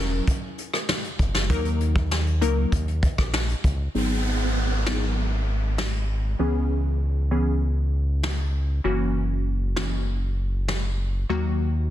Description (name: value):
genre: dancehall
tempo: 98 BPM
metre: 4/4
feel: straight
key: G# minor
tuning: A4 = 440 Hz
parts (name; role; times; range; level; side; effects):
- glassy wavetable pluck; accompaniment; 0.0-11.9 s; D#3 to A#4; -28 LUFS; left 2 dB; chorus, sidechain pumping, low-pass filter
- round analog bass; bass; 0.0-11.9 s; E1 to D#2; -24 LUFS; equal; none
- vintage brush drum kit; drums; 0.3-10.8 s; hi-hat, kick drum, rim click, snare drum; -26 LUFS; equal; soft clipping on snare
- downlifter; sound effects; 3.9-8.8 s; none; -31 LUFS; right 2 dB; none
room: little or no reverb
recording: dense, heavily limited modern master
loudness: -22 LUFS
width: side -12 dB against mid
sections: 0.0-3.9 A section; 3.9-11.9 B section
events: filter sweep on synth pluck 3.9-11.9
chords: 0.0 F#7; 1.5 D#m; 3.9 G#m7; 6.4 C#m7; 8.8 F#7; 11.3 D#m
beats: 0.27 0.89 | 1.50 2.11 2.72 3.34 | 3.95 4.56 5.17 5.79 | 6.40 7.01 7.62 8.23 | 8.85 9.46 10.07 10.68 | 11.29